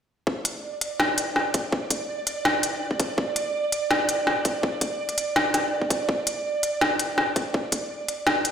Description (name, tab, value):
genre	half-time drum and bass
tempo	165 BPM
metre	4/4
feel	half-time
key	unclear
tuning	A4 = 445 Hz
part	electronic kick drum	drums	0.3-7.8 s	none	-25 LUFS	equal	overdrive, high-pass filter on kick
part	pulsing gated texture	texture	0.5-8.5 s	D5	-29 LUFS	right 3 dB	chorus, built-in reverb
part	organic electronic drum kit	drums	0.5-8.5 s	hi-hat, snare drum	-24 LUFS	left 1 dB	none
room	wet echo chamber reverb, RT60 2.0 s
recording	played on a big sound system in a bare room, stone room reverb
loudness	-22 LUFS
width	side -8 dB against mid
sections	0.3-8.5 A section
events	none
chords	none